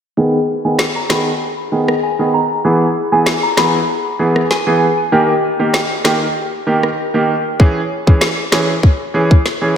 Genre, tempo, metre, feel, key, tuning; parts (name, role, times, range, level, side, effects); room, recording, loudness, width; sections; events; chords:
dancehall; 97 BPM; 4/4; straight; G# harmonic minor; A4 = 440 Hz
bright baby grand piano; accompaniment; 0.2-9.8 s; D#3 to G#4; -15 LUFS; right 1 dB; sidechain pumping, low-pass filter
soft synth bell; melody; 0.6-5.0 s; G#5 to B5; -20 LUFS; left 1 dB; chorus, phaser, low-pass filter, tape echo
island pop drum kit; drums; 0.8-9.6 s; kick drum, rim click, snare drum; -15 LUFS; equal
wet lush hall reverb, RT60 1.9 s, digital ambience; dreamy mix soaked in reverb; -12 LUFS; side -8 dB against mid
0.2-9.8 A section
filter sweep 0.2-9.8
0.2 G#m; 2.6 E; 5.1 D#; 7.6 C#m